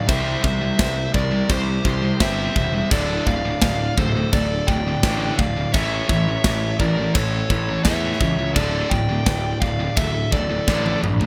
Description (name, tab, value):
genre	heavy metal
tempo	85 BPM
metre	4/4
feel	straight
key	D minor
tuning	A4 = 440 Hz
part	dark smooth lead guitar	melody	0.0-11.0 s	C5 to G5	-28 LUFS	equal	overdrive, digital delay
part	high-gain lead guitar	second line	0.0-11.0 s	G4 to D5	-33 LUFS	equal	distortion
part	high-gain distorted guitar	riff	0.0-11.3 s	D2 to C4	-30 LUFS	equal	none
part	scooped high-gain guitar	riff	0.0-11.3 s	D2 to C4	-29 LUFS	equal	distortion
part	fuzz picked electric bass	bass	0.1-11.3 s	D1 to E2	-27 LUFS	equal	overdrive
part	tight metal drum kit	drums	0.1-11.3 s	crash cymbal, kick drum, snare drum, toms	-25 LUFS	equal	none
room	little or no reverb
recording	none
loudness	-20 LUFS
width	mono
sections	0.0-11.3 A section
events	drum fill 10.7-11.3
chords	0.1 C; 2.9 Dm; 5.7 A; 8.6 D5